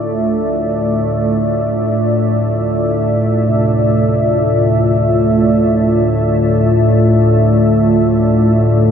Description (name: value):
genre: dark ambient drone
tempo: free time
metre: none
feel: none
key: D minor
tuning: A4 = 440 Hz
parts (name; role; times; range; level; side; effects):
- deep dark ambient pad; sustained chords; 0.0-8.9 s; A3 to E5; -13 LUFS; equal; chorus, built-in reverb
- gamelan-type bronze metallophone; arpeggios; 0.0-8.9 s; C3 to D4; -25 LUFS; equal; none
- organ-like drone; drone; 0.0-8.9 s; D2 to A2; -16 LUFS; equal; ensemble chorus, built-in reverb
room: wet cathedral reverb, RT60 5.7 s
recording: in a vast, echoing space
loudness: -11 LUFS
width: side -8 dB against mid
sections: 0.0-8.9 A section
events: fade-in on synth drone 0.0-8.9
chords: 0.0 Dmadd9